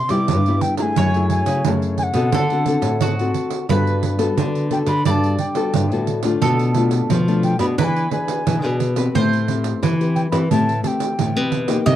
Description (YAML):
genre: samba and choro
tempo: 88 BPM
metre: 4/4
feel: straight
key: G major from 3.7 s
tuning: A4 = 440 Hz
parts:
  - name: wooden flute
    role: melody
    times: 0.0-11.5 s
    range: F#5 to D6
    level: -24 LUFS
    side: left 1 dB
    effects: none
  - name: mandolin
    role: second line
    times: 0.0-12.0 s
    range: F#4 to Eb5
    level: -27 LUFS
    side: right 4 dB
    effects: none
  - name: nylon-string guitar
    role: accompaniment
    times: 0.0-12.0 s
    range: G2 to B4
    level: -22 LUFS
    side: left 4 dB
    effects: none
  - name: nylon-string guitar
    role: bass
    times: 0.1-12.0 s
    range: F#2 to G3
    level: -20 LUFS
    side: left 1 dB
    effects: none
  - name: pandeiro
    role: percussion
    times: 0.1-12.0 s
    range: none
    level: -24 LUFS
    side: right 10 dB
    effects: none
room: little or no reverb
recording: dry, close 1970s-style studio recording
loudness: -16 LUFS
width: side -11 dB against mid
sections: 0.0-3.7 A section; 3.7-12.0 B section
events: none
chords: 0.0 Cmaj7; 1.0 F#m9; 2.3 D7; 3.7 Gmaj9; 6.4 Bm7b5; 7.8 E7; 9.1 Am9